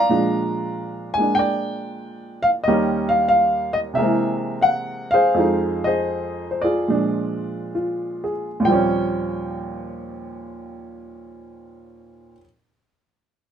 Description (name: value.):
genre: solo jazz.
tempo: 64-94 BPM.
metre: 4/4.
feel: swing 68% on 8ths, rubato.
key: unclear.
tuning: A4 = 440 Hz.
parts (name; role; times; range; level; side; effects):
warm upright piano; solo; 0.0-12.5 s; Eb2 to Bb5; -19 LUFS; equal; none.
room: moderate club ambience, RT60 0.5 s.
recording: minimal, uncompressed stereo recording.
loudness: -19 LUFS.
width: side -8 dB against mid.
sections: 0.0-8.7 A section; 8.7-12.4 B section.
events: slowing down 2.7-8.7.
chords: 0.1 Bb7; 2.7 Eb7; 4.0 Caug7; 5.4 Fm7; 6.9 Bb7; 8.7 Eb13.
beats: | 0.11 0.75 1.39 2.03 | 2.68 3.33 3.98 4.66 | 5.37 6.11 6.89 7.75 | 8.66 9.59 10.51 11.44.